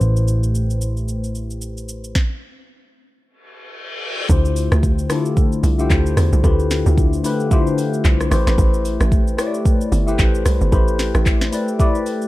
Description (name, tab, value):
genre	amapiano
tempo	112 BPM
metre	4/4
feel	swing 58% on 16ths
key	A minor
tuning	A4 = 439 Hz
part	tine electric piano	accompaniment	0.0-12.3 s	D3 to D5	-21 LUFS	left 3 dB	phaser, low-pass filter
part	hollow-body short-scale picked electric bass	bass	0.0-2.1 s	A1	-19 LUFS	equal	none
part	afro-pop drum kit	drums	0.0-12.3 s	handclaps, hi-hat, kick drum, rim click, shaker, snare drum	-19 LUFS	equal	none
part	reverse cymbal	sound effects	3.5-4.3 s	none	-28 LUFS	left 2 dB	none
part	tight log drum bass	bass	4.3-11.5 s	G1 to E2	-17 LUFS	equal	none
room	digital ambience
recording	dark, warm production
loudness	-15 LUFS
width	side -17 dB against mid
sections	0.0-4.3 A section; 4.3-12.3 B section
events	filter sweep on tine electric piano 0.0-4.3; stop 2.2-4.3; reverse cymbal 3.5-4.3; drop 4.3-12.3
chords	0.0 Am9; 4.3 Dm11; 8.3 Am9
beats	| 0.01 0.55 1.08 1.62 | 2.15 2.69 3.22 3.76 | 4.30 4.83 5.37 5.90 | 6.44 6.97 7.51 8.05 | 8.58 9.12 9.65 10.19 | 10.72 11.26 11.80